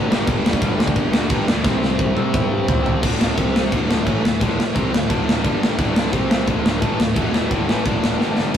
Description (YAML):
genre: punk rock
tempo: 174 BPM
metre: 4/4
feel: straight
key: unclear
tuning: A4 = 441 Hz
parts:
  - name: crunchy overdriven guitar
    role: riff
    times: 0.0-8.6 s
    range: D2 to C4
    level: -25 LUFS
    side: left 5 dB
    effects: none
  - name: heavy high-gain guitar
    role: riff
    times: 0.0-8.6 s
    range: D2 to C4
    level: -28 LUFS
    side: equal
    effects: distortion
  - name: raw garage guitar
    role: riff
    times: 0.0-8.5 s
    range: D2 to C4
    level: -28 LUFS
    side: right 4 dB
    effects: overdrive
  - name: fuzz picked electric bass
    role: bass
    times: 0.0-8.6 s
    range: D1 to G2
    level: -26 LUFS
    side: equal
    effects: overdrive
  - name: tight metal drum kit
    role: drums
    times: 0.1-8.6 s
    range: crash cymbal, kick drum, snare drum, toms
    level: -19 LUFS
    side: equal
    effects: none
room: light reverb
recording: rough rehearsal-room recording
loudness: -16 LUFS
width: side -9 dB against mid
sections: 0.0-3.0 A section; 3.0-8.5 B section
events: drum fill 1.6-3.0, 8.2-8.5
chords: 0.1 G5; 1.6 C5; 3.0 D5; 3.4 C5; 3.7 D5; 5.4 G5; 5.8 D5; 6.1 C5; 6.5 D5; 7.2 E5; 7.5 D5; 8.2 G5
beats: | 0.27 0.61 0.95 1.30 | 1.64 1.99 2.33 2.68 | 3.02 3.37 3.71 4.06 | 4.40 4.75 5.09 5.43 | 5.78 6.12 6.47 6.82 | 7.16 7.50 7.85 8.20 | 8.54